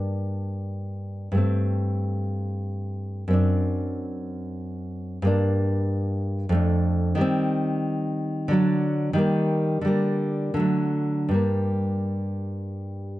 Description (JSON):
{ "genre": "classical, baroque-style dance for nylon-string guitar", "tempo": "78-95 BPM", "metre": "3/4", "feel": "rubato", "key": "G minor", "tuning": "A4 = 442 Hz", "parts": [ { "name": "nylon-string guitar", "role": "solo", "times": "0.0-13.2 s", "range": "F2 to D4", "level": "-23 LUFS", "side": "equal", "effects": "none" } ], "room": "light reverb", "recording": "dark, warm production, nothing above 10.3 kHz", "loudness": "-23 LUFS", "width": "side -16 dB against mid", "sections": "0.0-13.2 A section", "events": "none", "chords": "0.0 Gm; 1.4 Gsus24; 3.4 D7/F#; 5.3 Gm; 6.6 Dm/F; 7.2 Cm/Eb; 8.5 D; 9.2 Eb; 9.9 Gm/D; 10.6 D; 11.3 Gm", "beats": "0.08 0.73 | 1.40 2.06 2.72 | 3.36 4.01 4.65 | 5.30 5.94 6.58 | 7.23 7.88 8.54 | 9.20 9.88 10.60 | 11.35 12.11 12.87" }